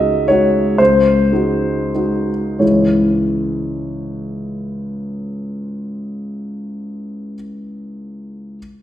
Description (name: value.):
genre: classical, piano waltz.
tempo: 85-125 BPM.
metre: 3/4.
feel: rubato.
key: C# minor.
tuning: A4 = 441 Hz.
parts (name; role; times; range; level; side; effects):
warm concert grand piano; solo; 0.0-8.6 s; C#2 to E5; -16 LUFS; equal; none.
room: wet recital hall reverb, RT60 1.8 s.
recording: recorded in a church or concert hall.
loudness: -15 LUFS.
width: side -12 dB against mid.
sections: 0.0-2.6 A section; 2.6-6.4 B section.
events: slowing down 0.0-2.6.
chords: 0.0 G#7/C#; 2.6 C#m.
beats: 0.29 | 0.79 1.32 1.94 | 2.61 3.22 3.86 | 4.48 5.10 5.74.